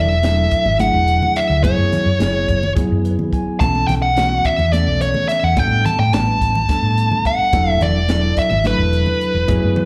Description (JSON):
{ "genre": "electric jazz fusion", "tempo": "214 BPM (eighths)", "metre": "7/8", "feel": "straight", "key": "unclear", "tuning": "A4 = 441 Hz", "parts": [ { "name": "dark smooth lead guitar", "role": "melody", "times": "0.0-9.9 s", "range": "B4 to A5", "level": "-20 LUFS", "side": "equal", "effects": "overdrive, slapback echo" }, { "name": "bell-like tine electric piano", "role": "accompaniment", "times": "0.0-9.9 s", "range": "E3 to G#5", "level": "-25 LUFS", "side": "equal", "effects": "slapback echo" }, { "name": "hollow-body short-scale fingered electric bass", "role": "bass", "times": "0.0-9.8 s", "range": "E1 to A2", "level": "-21 LUFS", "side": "equal", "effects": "none" }, { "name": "congas", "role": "percussion", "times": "0.1-9.9 s", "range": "none", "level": "-28 LUFS", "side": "equal", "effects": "none" }, { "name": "crisp fusion drum kit", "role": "drums", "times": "0.2-9.9 s", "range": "hi-hat, kick drum, snare drum, toms", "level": "-24 LUFS", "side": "equal", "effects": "none" } ], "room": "light reverb", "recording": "live gig heard through the venue's PA, club reverb", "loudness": "-17 LUFS", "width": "mono", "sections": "0.0-9.9 A section", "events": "tine electric piano fill 2.8-3.6", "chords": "0.0 E9sus4; 1.6 F#9sus4; 3.6 B9sus4; 5.6 A9sus4; 7.5 E9sus4" }